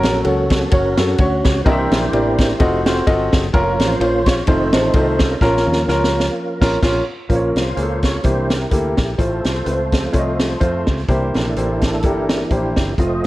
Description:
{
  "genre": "uptempo gospel",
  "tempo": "127 BPM",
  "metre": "4/4",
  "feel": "swing 55% on 8ths",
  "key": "Bb harmonic minor",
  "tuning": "A4 = 440 Hz",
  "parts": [
    { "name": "warm upright piano", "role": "accompaniment", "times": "0.0-13.3 s", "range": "A2 to E5", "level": "-20 LUFS", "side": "equal", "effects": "none" },
    { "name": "tonewheel organ", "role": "sustained chords", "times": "0.0-13.3 s", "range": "Eb3 to Eb5", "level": "-22 LUFS", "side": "right 1 dB", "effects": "overdrive, chorus vibrato, slow rotary speaker" },
    { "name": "fingered electric bass", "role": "bass", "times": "0.0-13.3 s", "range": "F1 to Gb2", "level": "-23 LUFS", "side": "equal", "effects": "transformer saturation" },
    { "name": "swinging big-band drum kit", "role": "drums", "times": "0.0-13.3 s", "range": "crash cymbal, hi-hat, kick drum, ride cymbal, snare drum", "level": "-18 LUFS", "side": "equal", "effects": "none" }
  ],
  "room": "light reverb, studio reverb",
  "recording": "worn, warbling old tape, cassette tape, warbly pitch drift",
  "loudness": "-15 LUFS",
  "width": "side -17 dB against mid",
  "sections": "0.0-7.3 A section; 7.3-13.3 B section",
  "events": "tonewheel organ solo 0.0-7.3, 7.3-13.3; drum fill 5.4-7.3; band accent 6.4-7.3",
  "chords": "0.0 Gb; 1.7 C7; 2.6 F7b9; 3.5 Bbm/F; 4.5 F7; 5.4 Bbm; 8.2 C7; 9.2 F/A; 11.1 C7"
}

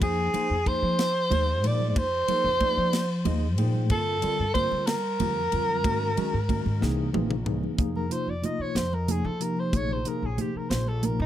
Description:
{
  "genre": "electric jazz fusion",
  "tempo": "62 BPM (dotted quarters)",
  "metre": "6/8",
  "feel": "straight",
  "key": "F dorian, F minor from 7.8 s",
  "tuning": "A4 = 439 Hz",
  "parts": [
    { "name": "mellow soprano saxophone", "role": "melody", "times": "0.0-11.3 s", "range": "Eb4 to Eb5", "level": "-27 LUFS", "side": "right 1 dB", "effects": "tape echo" },
    { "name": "tine electric piano", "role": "accompaniment", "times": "0.0-11.2 s", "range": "C3 to G5", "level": "-32 LUFS", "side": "left 2 dB", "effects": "fast stereo tremolo, wide subtle chorus" },
    { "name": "upright bass", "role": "bass", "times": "0.0-11.3 s", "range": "Bb1 to G3", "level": "-28 LUFS", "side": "left 1 dB", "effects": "none" },
    { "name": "tight funk drum kit", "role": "drums", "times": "0.0-11.2 s", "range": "hi-hat, kick drum, ride cymbal, snare drum, toms", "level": "-32 LUFS", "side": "equal", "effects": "none" },
    { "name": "congas", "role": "percussion", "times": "0.0-11.2 s", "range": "none", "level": "-33 LUFS", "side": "right 6 dB", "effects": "none" }
  ],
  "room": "light reverb",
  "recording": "none",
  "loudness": "-24 LUFS",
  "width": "side -11 dB against mid",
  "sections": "0.0-7.8 A section; 7.8-11.3 B section",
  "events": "tine electric piano fill 2.9-3.9; drum fill 6.8-7.8; soprano saxophone solo 7.8-11.3",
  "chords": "0.0 Fm7; 3.9 Gm11; 5.9 Ab9sus4; 6.8 C7alt; 7.8 Fm11; 9.7 Bb9sus4"
}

